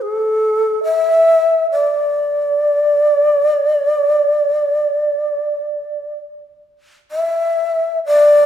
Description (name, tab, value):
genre	japanese traditional, Japanese chamber music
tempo	59-73 BPM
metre	4/4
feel	rubato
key	unclear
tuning	A4 = 440 Hz
part	breathy long shakuhachi	solo	0.0-8.5 s	A4 to E5	-13 LUFS	equal	none
room	wet recital hall reverb, RT60 1.6 s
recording	recorded in a church or concert hall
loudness	-13 LUFS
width	side -10 dB against mid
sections	0.0-7.1 A section; 7.1-8.5 B section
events	none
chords	none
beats	| 0.02 0.85 1.71 2.57 | 3.43 4.30 5.21 6.17 | 7.14 8.04